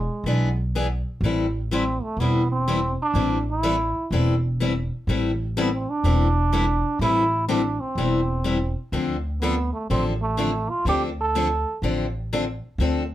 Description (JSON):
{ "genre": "acoustic string swing (jazz manouche)", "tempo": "124 BPM", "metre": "4/4", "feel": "swing 66% on 8ths", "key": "A minor", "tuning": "A4 = 440 Hz", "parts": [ { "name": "trombone with metal mute", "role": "melody", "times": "0.0-11.8 s", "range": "G#3 to A4", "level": "-25 LUFS", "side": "right 2 dB", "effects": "none" }, { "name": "upright bass", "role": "bass", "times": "0.0-13.1 s", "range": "E1 to D2", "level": "-24 LUFS", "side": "equal", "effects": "none" }, { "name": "picked steel-string acoustic guitar", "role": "accompaniment", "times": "0.3-13.0 s", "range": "D3 to A4", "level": "-25 LUFS", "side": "left 3 dB", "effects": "none" } ], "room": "light reverb", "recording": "none", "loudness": "-21 LUFS", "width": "side -13 dB against mid", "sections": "0.0-1.2 A section; 1.2-13.1 A section", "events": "none", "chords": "0.0 E7; 1.2 Am7; 8.9 Dm7" }